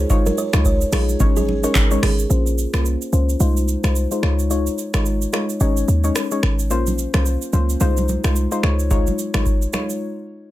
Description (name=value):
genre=afrobeats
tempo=109 BPM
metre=4/4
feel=swing 58% on 16ths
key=Db major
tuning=A4 = 440 Hz
part: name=soft round pluck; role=accompaniment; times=0.0-10.0 s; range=Ab3 to Db5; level=-23 LUFS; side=left 2 dB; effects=chorus, low-pass filter
part: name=short 808-style bass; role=bass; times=0.0-9.7 s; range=Ab1 to Eb2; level=-19 LUFS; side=equal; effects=none
part: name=booming analog drum machine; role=drums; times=0.1-10.0 s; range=finger snaps, handclaps, hi-hat, kick drum, rim click, shaker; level=-22 LUFS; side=equal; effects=overdrive, soft clipping on snare
part: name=buzzing kalimba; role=riff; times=0.3-2.2 s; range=Ab4 to Db5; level=-26 LUFS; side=right 5 dB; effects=ping-pong delay
part: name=congas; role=percussion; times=0.3-2.2, 6.9-9.9 s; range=none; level=-29 LUFS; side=right 2 dB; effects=none
room=light reverb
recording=dense, heavily limited modern master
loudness=-17 LUFS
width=side -15 dB against mid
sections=0.0-2.3 A section; 2.3-10.5 B section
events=filter sweep on synth pluck 2.3-10.5; break 10.0-10.5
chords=0.0 Dbadd9; 1.2 Absus4; 2.3 Bbmadd9; 3.4 Fm7/C; 4.2 Dbadd9; 5.6 Absus4; 6.7 Bbmadd9; 7.8 Fm7/C; 8.6 Dbadd9; 10.0 N.C.